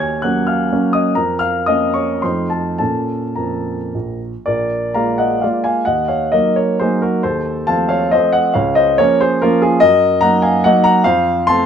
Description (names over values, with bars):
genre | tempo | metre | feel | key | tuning
classical, romantic triple-time dance for piano with dotted rhythms | 102-156 BPM | 3/4 | rubato | Bb minor | A4 = 440 Hz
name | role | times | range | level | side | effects
warm baby grand piano | solo | 0.0-11.7 s | Bb1 to Ab6 | -13 LUFS | equal | none
room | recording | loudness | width
light reverb | dark, warm production | -13 LUFS | side -8 dB against mid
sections
0.0-4.5 A section; 4.5-11.7 B section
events
none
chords
0.0 Ebm7; 1.2 Bbm/F; 2.2 F7; 2.8 Bbm; 4.5 Bb7; 5.9 Ebm; 7.2 F7/Eb; 8.5 Bbm/Db; 9.8 Ebm/Gb; 11.1 F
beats
0.23 0.72 | 1.18 1.68 2.23 | 2.80 3.38 3.95 | 4.48 4.95 5.42 | 5.87 6.34 6.81 | 7.24 7.68 8.13 | 8.55 8.99 9.42 | 9.81 10.22 10.66 | 11.06 11.48